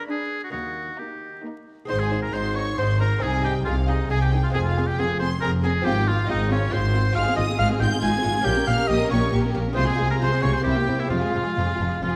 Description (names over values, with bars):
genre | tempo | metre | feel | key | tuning
classical, baroque-style concerto movement with solo episodes | 136 BPM | 3/4 | straight | Ab major, F minor from 7.2 s | A4 = 440 Hz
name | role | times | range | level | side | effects
clear oboe | melody | 0.0-12.2 s | Db4 to Ab5 | -29 LUFS | equal | none
lute | accompaniment | 0.0-12.2 s | Eb2 to G#4 | -33 LUFS | equal | none
clear symphonic violin section | melody | 0.1-12.2 s | F4 to Ab6 | -34 LUFS | equal | none
rich studio violin section | second line | 0.1-12.2 s | D4 to C5 | -34 LUFS | equal | none
rich studio viola section | accompaniment | 0.1-12.2 s | F3 to Eb4 | -33 LUFS | equal | none
dark studio cello section | bass | 0.5-12.1 s | Eb2 to C3 | -30 LUFS | equal | none
rich chamber double bass section | bass | 1.9-12.1 s | F1 to C2 | -28 LUFS | equal | none
room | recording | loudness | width
wet concert hall reverb, RT60 1.8 s | vinyl crackle | -23 LUFS | mono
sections
0.0-1.9 A section; 1.9-12.2 B section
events
none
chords
0.0 E7 (rootless); 0.5 Eb; 1.9 Ab; 3.2 Ab/C; 4.5 Fm; 5.9 Fm/Ab; 8.5 Gdim/Bb; 9.8 Fm/C; 10.7 C7; 11.1 Fm